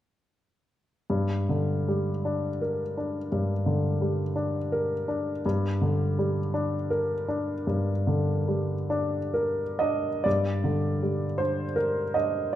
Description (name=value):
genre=classical, romantic nocturne for solo piano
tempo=40-59 BPM (dotted quarters)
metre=12/8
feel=rubato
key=G minor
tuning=A4 = 442 Hz
part: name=warm baby grand piano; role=solo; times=1.1-12.6 s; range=G2 to Eb5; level=-25 LUFS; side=equal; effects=none
room=wet recital hall reverb, RT60 1.5 s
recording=dark, warm production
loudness=-25 LUFS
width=side -12 dB against mid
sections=1.1-10.3 A section; 10.3-12.6 B section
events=none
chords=1.1 Gm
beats=| 1.10 2.25 3.31 4.35 | 5.44 6.53 7.67 8.90 | 10.26 11.41 12.55